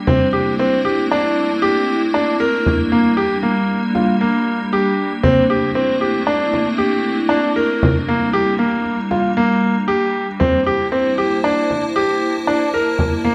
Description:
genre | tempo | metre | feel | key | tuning
contemporary instrumental, chamber music in an uneven meter | 116 BPM | 5/4 | straight | unclear | A4 = 440 Hz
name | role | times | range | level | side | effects
icy glass pad | sustained chords | 0.0-13.3 s | G3 to A5 | -22 LUFS | equal | chorus, built-in reverb
bright grand piano | arpeggios | 0.1-13.3 s | Bb3 to Bb4 | -19 LUFS | equal | none
frame drum | percussion | 0.1-13.2 s | none | -24 LUFS | equal | none
room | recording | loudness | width
moderate concert hall reverb, RT60 2.1 s | none | -17 LUFS | mono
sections
0.0-13.3 A section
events
none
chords
0.1 C13; 2.7 Bb6; 5.2 C13; 7.8 Bb6; 10.4 C13

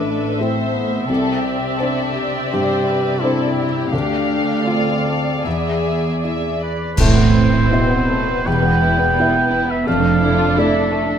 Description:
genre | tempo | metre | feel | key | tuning
cinematic, emotional film score for orchestra | 76-88 BPM | 4/4 | rubato | A minor | A4 = 440 Hz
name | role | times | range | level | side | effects
muted studio violin section | melody | 0.0-11.2 s | A4 to F5 | -26 LUFS | left 4 dB | none
warm duduk | melody | 0.0-6.2 s | B3 to G4 | -23 LUFS | left 3 dB | none
muted studio violin section | second line | 0.0-11.2 s | G3 to C5 | -26 LUFS | left 4 dB | none
felt-muted upright piano | accompaniment | 0.0-11.2 s | A1 to F5 | -23 LUFS | left 1 dB | none
muted studio viola section | accompaniment | 0.0-11.2 s | B3 to E5 | -24 LUFS | right 2 dB | none
muted studio cello section | bass | 0.0-10.5 s | D2 to C3 | -23 LUFS | right 4 dB | none
warm oboe | second line | 6.6-11.2 s | B4 to G5 | -20 LUFS | right 2 dB | none
muted studio double bass section | bass | 7.0-10.4 s | E1 to A1 | -21 LUFS | right 3 dB | none
clash cymbals and concert bass drum | percussion | 7.0-8.4 s | none | -21 LUFS | equal | none
room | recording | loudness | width
light reverb | close, detailed microphones | -15 LUFS | side -8 dB against mid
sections
0.0-7.0 A section; 7.0-11.2 A section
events
band accent 7.0-7.7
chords
0.0 Amadd9; 1.1 Csus2; 3.9 Dm; 5.5 E; 7.0 Amadd9; 8.5 Em; 9.9 Dmadd9/F

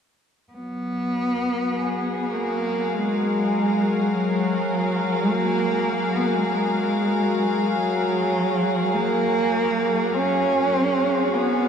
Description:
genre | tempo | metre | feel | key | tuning
ambient | 50 BPM | 4/4 | straight | F# major | A4 = 436 Hz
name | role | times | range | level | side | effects
rich cello | melody | 0.5-11.7 s | F#3 to C#4 | -22 LUFS | right 1 dB | tape echo
warm studio string section | sustained chords | 0.6-11.7 s | F#3 to E#5 | -24 LUFS | left 1 dB | none
room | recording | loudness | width
wet huge ambient reverb, RT60 8.5 s | dark, warm production | -20 LUFS | side -7 dB against mid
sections
0.5-11.7 A section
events
none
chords
0.5 F#maj7; 10.1 G#m/F#

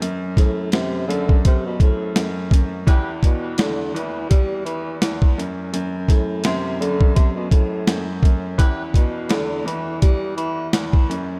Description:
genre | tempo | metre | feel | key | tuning
hip hop, boom-bap hip-hop | 84 BPM | 4/4 | swing 57% on 16ths | E minor | A4 = 435 Hz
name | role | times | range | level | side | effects
clear grand piano | accompaniment | 0.0-11.4 s | E2 to F#2 | -28 LUFS | equal | cassette tape, high-pass filter, low-pass filter
boom bap sampler-style drum kit | drums | 0.0-11.3 s | hi-hat, kick drum, snare drum | -19 LUFS | equal | none
breathy tenor saxophone | melody | 0.4-10.7 s | A2 to G3 | -28 LUFS | equal | high-pass filter, low-pass filter, diffuse ambient delay
muted trumpet section | stabs | 2.9-3.1, 8.6-8.8 s | E4 to B4 | -35 LUFS | equal | high-pass filter, low-pass filter, diffuse ambient delay
room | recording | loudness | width
light reverb, studio ambience | none | -20 LUFS | mono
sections
0.0-11.4 A section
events
none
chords
none

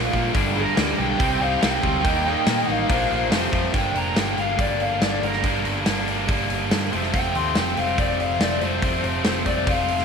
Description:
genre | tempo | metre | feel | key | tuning
classic rock | 142 BPM | 4/4 | straight | G minor | A4 = 440 Hz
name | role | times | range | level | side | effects
cranked stack guitar | riff | 0.0-3.7 s | F2 to Eb4 | -28 LUFS | right 1 dB | overdrive
overdriven electric guitar | riff | 0.0-10.0 s | F2 to Eb4 | -27 LUFS | left 11 dB | none
raw garage guitar | riff | 0.0-10.0 s | F2 to Eb4 | -27 LUFS | right 12 dB | overdrive
picked electric bass | bass | 0.0-10.0 s | F1 to Bb2 | -29 LUFS | equal | none
big rock drum kit | drums | 0.1-10.0 s | hi-hat, kick drum, snare drum | -25 LUFS | equal | none
bluesy overdriven lead guitar | melody | 0.6-10.0 s | Bb4 to C6 | -26 LUFS | left 2 dB | distortion
electric slide guitar | second line | 2.3-3.6 s | G4 to Eb5 | -32 LUFS | left 8 dB | none
room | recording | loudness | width
moderate echo chamber reverb, RT60 2.4 s | 1960s-style stereo with parts hard left and right | -19 LUFS | side -6 dB against mid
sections
0.0-3.7 A section; 3.7-10.0 B section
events
lead electric guitar solo 3.7-10.0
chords
0.3 Gm; 1.2 Cm; 2.0 Eb; 2.9 Bb; 3.3 F; 3.7 Gm; 6.9 F

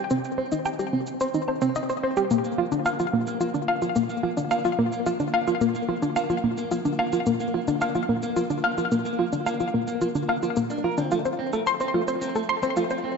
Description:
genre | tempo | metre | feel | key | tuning
ambient, sequencer-driven space music | 109 BPM | 4/4 | straight | unclear | A4 = 444 Hz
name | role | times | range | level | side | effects
electric guitar at the edge of break-up | arpeggios | 0.0-13.1 s | A3 to Bb4 | -32 LUFS | right 1 dB | auto-pan, ping-pong delay
analog pluck | riff | 0.0-13.0 s | Bb3 to C6 | -23 LUFS | equal | chorus, ping-pong delay
cabasa and woodblock | percussion | 0.1-13.0 s | none | -41 LUFS | equal | ping-pong delay
room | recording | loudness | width
wet plate reverb, RT60 3.8 s | dark, warm production, nothing above 7.8 kHz | -23 LUFS | side -5 dB against mid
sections
0.0-13.2 A section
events
fade-in on clean electric guitar 0.0-13.2; filter sweep on synth arpeggio sound 0.0-13.2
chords
0.0 Cm; 2.3 Bb; 11.1 F

